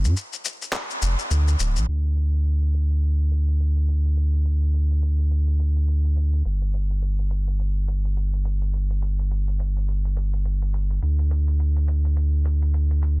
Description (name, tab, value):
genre	organic downtempo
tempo	105 BPM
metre	4/4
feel	swing 59% on 16ths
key	unclear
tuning	A4 = 438 Hz
part	warm sub bass	bass	0.0-13.2 s	D1 to G2	-20 LUFS	equal	none
part	electronic shaker and handclaps	drums	0.0-13.2 s	none	-30 LUFS	left 2 dB	none
room	little or no reverb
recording	dense, heavily limited modern master, low-pass filter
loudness	-20 LUFS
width	side -24 dB against mid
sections	0.0-1.9 A section; 1.9-13.2 B section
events	none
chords	none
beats	0.16 0.73 1.30 | 1.88 2.45 3.02 3.59 | 4.16 4.73 5.30 5.88 | 6.45 7.02 7.59 8.16 | 8.73 9.30 9.88 10.45 | 11.02 11.59 12.16 12.73